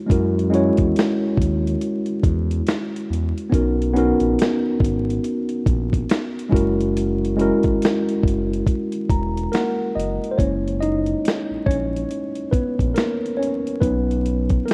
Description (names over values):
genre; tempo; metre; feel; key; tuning
lo-fi hip hop; 70 BPM; 4/4; swing 60% on 16ths; unclear; A4 = 438 Hz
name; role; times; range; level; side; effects
mellow tine electric piano; accompaniment; 0.0-14.7 s; F#3 to A#5; -23 LUFS; equal; cassette tape
smooth gliding synth bass; bass; 0.1-14.6 s; E1 to F#2; -26 LUFS; equal; none
dusty soul sampler-style drum kit; drums; 0.1-14.7 s; hi-hat, kick drum, snare drum; -23 LUFS; equal; none
room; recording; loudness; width
light reverb; rough home demo mix, vinyl crackle; -21 LUFS; mono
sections
0.0-10.4 A section; 10.4-14.7 B section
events
tine electric piano fill 8.7-10.4; tine electric piano solo 10.4-14.7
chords
0.1 F#7; 3.5 Bmaj9; 6.5 F#7; 13.8 Bmaj7